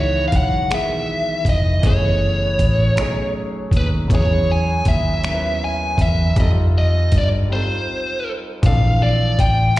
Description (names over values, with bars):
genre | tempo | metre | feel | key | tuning
slow six-eight R&B | 53 BPM (dotted quarters) | 6/8 | straight | unclear | A4 = 440 Hz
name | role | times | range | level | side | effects
biting lead guitar | melody | 0.0-9.8 s | B4 to G#5 | -21 LUFS | equal | overdrive, slapback echo
warm baby grand piano | accompaniment | 0.0-9.8 s | D#3 to B4 | -26 LUFS | equal | slapback echo
vintage muted fingered electric bass | bass | 0.0-9.8 s | E#1 to G2 | -18 LUFS | equal | none
dusty soul sampler-style drum kit | drums | 0.3-9.8 s | finger snaps, hi-hat, kick drum | -19 LUFS | equal | none
room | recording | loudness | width
light reverb | live gig heard through the venue's PA, recital hall reverb | -16 LUFS | side -16 dB against mid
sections
0.0-9.8 A section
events
break 7.5-8.6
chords
0.0 C#m11; 1.8 F#m11; 3.0 B13; 4.1 E6; 6.4 F9; 8.6 A#maj9#11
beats
0.70 | 1.83 2.96 | 4.10 5.23 | 6.36 7.49 | 8.63 9.76